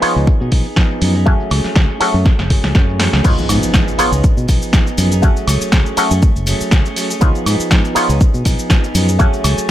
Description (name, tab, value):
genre	filtered disco house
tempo	121 BPM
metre	4/4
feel	swing 55% on 16ths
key	Db mixolydian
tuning	A4 = 440 Hz
part	auto-wah clav	accompaniment	0.0-9.7 s	A3 to Db5	-19 LUFS	equal	overdrive, phaser, sidechain pumping, low-pass filter
part	clean electric guitar	riff	0.0-9.7 s	F3 to Ab4	-21 LUFS	right 1 dB	sidechain pumping, low-pass filter
part	fingered electric bass	bass	0.0-9.6 s	Gb1 to Cb3	-17 LUFS	equal	sidechain pumping, low-pass filter
part	punchy analog drum machine	drums	0.0-9.7 s	cabasa, crash cymbal, hi-hat, snare drum, woodblock	-20 LUFS	equal	none
part	maracas	percussion	0.0-9.7 s	none	-29 LUFS	left 4 dB	sidechain pumping on perc, low-pass filter on perc
part	electronic kick drum	drums	0.3-9.3 s	none	-12 LUFS	equal	none
part	impact	sound effects	3.3-5.2 s	none	-25 LUFS	equal	none
room	little or no reverb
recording	none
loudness	-12 LUFS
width	side -12 dB against mid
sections	0.0-3.2 A section; 3.2-9.7 B section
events	drum fill 2.3-3.2; drop 3.2-9.7; impact 3.2-5.2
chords	0.0 Db9; 1.3 Gbmadd9; 3.2 Db9; 5.2 Gbmadd9; 7.2 Db9; 9.2 Gbmadd9